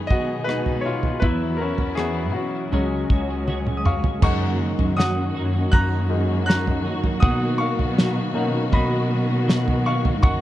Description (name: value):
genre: pop ballad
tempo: 80 BPM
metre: 4/4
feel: straight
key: F# major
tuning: A4 = 440 Hz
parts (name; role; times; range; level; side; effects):
- clear concert grand piano; accompaniment; 0.0-10.4 s; F#3 to F#6; -26 LUFS; left 2 dB; plate reverb
- dark studio string section; sustained chords; 0.0-10.4 s; B2 to G#4; -28 LUFS; left 1 dB; none
- twelve-string electric guitar; arpeggios; 0.0-10.4 s; F#2 to G#4; -29 LUFS; right 3 dB; ensemble chorus, ping-pong delay
- warm studio cello section; bass; 0.0-10.4 s; C#2 to B2; -25 LUFS; equal; none
- damped 70s drum kit; drums; 0.1-10.4 s; crash cymbal, kick drum, rim click, snare drum, toms; -20 LUFS; equal; none
room: light reverb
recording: dark, warm production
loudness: -19 LUFS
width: side -14 dB against mid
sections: 0.0-4.2 A section; 4.2-10.4 B section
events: grand piano solo 0.0-4.2, 4.2-10.4; drum fill 3.5-4.2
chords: 0.0 B6; 1.2 Esus2; 2.7 C#sus4; 4.2 F#6; 7.2 Bmaj7